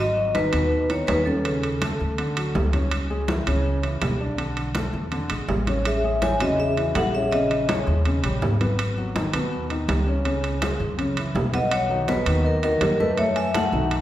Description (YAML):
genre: Afro-Cuban jazz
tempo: 164 BPM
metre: 4/4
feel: straight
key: G# minor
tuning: A4 = 440 Hz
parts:
  - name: vibraphone with medium hard mallets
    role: melody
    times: 0.0-2.7, 5.9-8.4, 11.6-14.0 s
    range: A4 to G#5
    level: -25 LUFS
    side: left 2 dB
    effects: none
  - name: worn celesta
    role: second line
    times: 0.0-2.1, 5.9-8.0, 11.5-14.0 s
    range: C#4 to A5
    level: -28 LUFS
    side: right 2 dB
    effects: none
  - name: upright bass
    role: bass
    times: 0.0-14.0 s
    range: G#1 to F#2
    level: -26 LUFS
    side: equal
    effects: none
  - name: warm concert grand piano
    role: accompaniment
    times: 0.2-14.0 s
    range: A2 to D5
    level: -27 LUFS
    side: left 1 dB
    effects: none
  - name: congas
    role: percussion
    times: 0.2-14.0 s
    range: none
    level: -31 LUFS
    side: left 1 dB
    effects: none
  - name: timbales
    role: percussion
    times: 0.3-14.0 s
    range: none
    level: -30 LUFS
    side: right 4 dB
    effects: none
room: wet recital hall reverb, RT60 1.5 s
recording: recorded in a church or concert hall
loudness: -20 LUFS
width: side -13 dB against mid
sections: 0.0-11.7 A section; 11.7-14.0 B section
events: none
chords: 0.0 G#m7; 1.5 Aadd11; 2.2 D; 2.9 C#m7; 4.4 Bm7; 5.1 Amaj7; 7.3 A#m7b5; 8.1 D#7b13; 8.8 G#m7; 10.3 C#5; 11.0 F#5; 11.7 Bmaj7